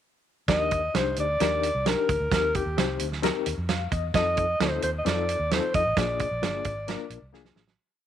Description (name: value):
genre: uptempo 1960s-style soul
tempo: 131 BPM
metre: 4/4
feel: straight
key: Eb major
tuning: A4 = 440 Hz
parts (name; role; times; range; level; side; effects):
- breathy alto saxophone; melody; 0.5-7.3 s; G4 to Eb5; -26 LUFS; equal; none
- barky reed electric piano; accompaniment; 0.5-7.6 s; Bb3 to F5; -31 LUFS; left 13 dB; overdrive, medium tremolo
- vintage muted fingered electric bass; bass; 0.5-7.8 s; G1 to F2; -32 LUFS; equal; none
- warm soul drum kit; drums; 0.5-7.8 s; hi-hat, kick drum, snare drum; -28 LUFS; right 5 dB; none
room: light reverb, small room ambience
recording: 1960s-style stereo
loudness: -23 LUFS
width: side -10 dB against mid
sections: 0.5-7.8 verse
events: fade-out 6.0-7.8; drum fill 7.3-7.8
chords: 0.5 Ebmaj7; 2.3 Cm7; 4.1 F7; 6.0 Bb7